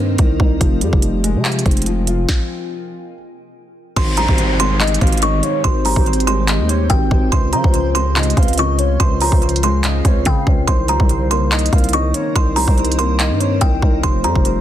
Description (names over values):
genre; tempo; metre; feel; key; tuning
hip hop, trap; 143 BPM; 4/4; half-time; Ab major; A4 = 440 Hz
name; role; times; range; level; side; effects
dark concert grand piano; accompaniment; 0.0-14.6 s; Db3 to F4; -23 LUFS; left 4 dB; low-pass filter
granular cloud pad; sustained chords; 0.0-14.6 s; Db3 to F5; -28 LUFS; equal; built-in reverb
growling 808-style bass; bass; 0.0-14.6 s; F1 to Db3; -18 LUFS; equal; none
trap drum kit; drums; 0.2-14.6 s; crash cymbal, handclaps, hi-hat, kick drum, snare drum; -16 LUFS; equal; none
kalimba; melody; 4.0-14.4 s; G5 to Db6; -21 LUFS; right 1 dB; low-pass filter, digital delay
soft octave-layered synth lead; second line; 4.0-14.6 s; C5 to F5; -25 LUFS; equal; chorus, phaser, digital delay
downlifter; sound effects; 4.0-7.3 s; none; -26 LUFS; equal; none
room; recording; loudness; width
little or no reverb; dense, heavily limited modern master; -13 LUFS; side -11 dB against mid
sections
0.0-4.0 A section; 4.0-14.6 B section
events
stop 2.3-4.0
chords
0.0 Cm7; 0.6 Fmadd9; 4.0 Abmaj7; 7.3 Dbmaj7; 10.7 Cm7; 14.0 Fsus2